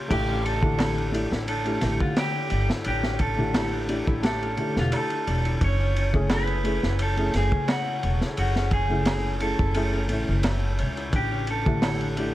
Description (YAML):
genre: trip hop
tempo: 87 BPM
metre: 4/4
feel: straight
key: unclear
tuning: A4 = 440 Hz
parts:
  - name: felt-muted upright piano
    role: accompaniment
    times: 0.0-12.3 s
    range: D3 to A4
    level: -30 LUFS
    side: left 1 dB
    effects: harmonic tremolo, tape echo
  - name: concert harp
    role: arpeggios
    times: 0.0-12.3 s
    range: Db3 to D5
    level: -33 LUFS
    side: left 3 dB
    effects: ping-pong delay
  - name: electric guitar at the edge of break-up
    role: melody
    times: 0.1-12.3 s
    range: F4 to C#5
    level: -30 LUFS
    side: right 2 dB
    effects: dub echo
  - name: upright bass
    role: bass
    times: 0.1-12.3 s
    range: E1 to C#2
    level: -27 LUFS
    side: equal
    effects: none
  - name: crunchy breakbeat drum kit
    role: drums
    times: 0.1-12.3 s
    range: crash cymbal, kick drum, ride cymbal, snare drum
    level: -28 LUFS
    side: equal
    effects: vintage 12-bit sampler grit
  - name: darbuka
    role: percussion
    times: 0.8-12.0 s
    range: none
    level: -35 LUFS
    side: right 3 dB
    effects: none
room: small room reverb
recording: vinyl crackle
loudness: -22 LUFS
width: side -15 dB against mid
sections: 0.1-12.3 A section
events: none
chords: 0.1 A7sus4; 5.6 F#m7; 11.1 A7sus4